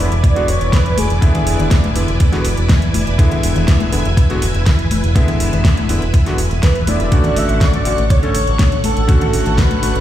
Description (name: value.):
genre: nu-disco, nu disco.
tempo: 122 BPM.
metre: 4/4.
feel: straight.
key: E mixolydian.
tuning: A4 = 441 Hz.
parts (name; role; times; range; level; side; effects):
wide unison lead; melody; 0.0-1.9, 6.6-10.0 s; G#4 to E5; -21 LUFS; right 1 dB; lush chorus, ping-pong delay.
warm electric grand piano; accompaniment; 0.0-9.9 s; D3 to A4; -22 LUFS; left 1 dB; dub echo.
string machine, full ensemble; sustained chords; 0.0-10.0 s; D3 to C#6; -24 LUFS; right 1 dB; ensemble chorus, vintage 12-bit sampler grit, sidechain pumping.
fingered electric bass with an envelope filter; bass; 0.0-10.0 s; E1 to E2; -18 LUFS; equal; none.
pop drum kit; drums; 0.1-10.0 s; hi-hat, snare drum; -23 LUFS; equal; studio reverb.
electronic kick drum; drums; 0.2-9.7 s; none; -13 LUFS; equal; studio reverb.
congas; percussion; 1.0-9.8 s; none; -24 LUFS; left 2 dB; none.
room: light reverb.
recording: played on a big sound system in a bare room, large studio reverb.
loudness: -12 LUFS.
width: side -12 dB against mid.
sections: 0.0-10.0 A section.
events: none.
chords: 0.0 E7; 7.1 Dmaj7.